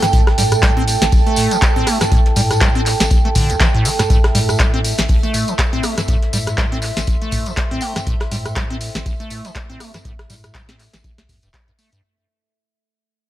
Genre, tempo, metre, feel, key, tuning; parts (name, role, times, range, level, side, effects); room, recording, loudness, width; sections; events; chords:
acid house; 121 BPM; 4/4; swing 57% on 16ths; A minor; A4 = 440 Hz
glassy synth bell; melody; 0.0-0.1, 7.8-8.0 s; G5; -28 LUFS; right 2 dB; chorus, tremolo, tape echo
dark analog pad; sustained chords; 0.0-12.0 s; E5 to G5; -27 LUFS; right 5 dB; chorus, sidechain pumping
acid bass, square; riff; 0.0-12.0 s; A1 to C4; -23 LUFS; equal; lush chorus, sidechain pumping, analog delay
booming analog drum machine; drums; 0.0-12.0 s; handclaps, hi-hat, rim click, snare drum, toms; -21 LUFS; equal
soft brush drum kit; drums; 0.0-12.0 s; hi-hat, snare drum; -34 LUFS; right 3 dB
tambourine; percussion; 0.0-12.0 s; -26 LUFS; left 2 dB
deep dark ambient pad; texture; 0.0-12.1 s; A4 to C6; -25 LUFS; right 3 dB; chorus, built-in reverb, sidechain pumping
warm sub bass; bass; 0.1-11.5 s; E1 to A2; -22 LUFS; equal; sidechain pumping
electronic kick drum; drums; 0.1-11.7 s; -17 LUFS; equal
light reverb; -14 LUFS; side -14 dB against mid
0.0-12.0 A section
drop 0.0-12.0; fade-out 4.1-12.0
0.0 Am7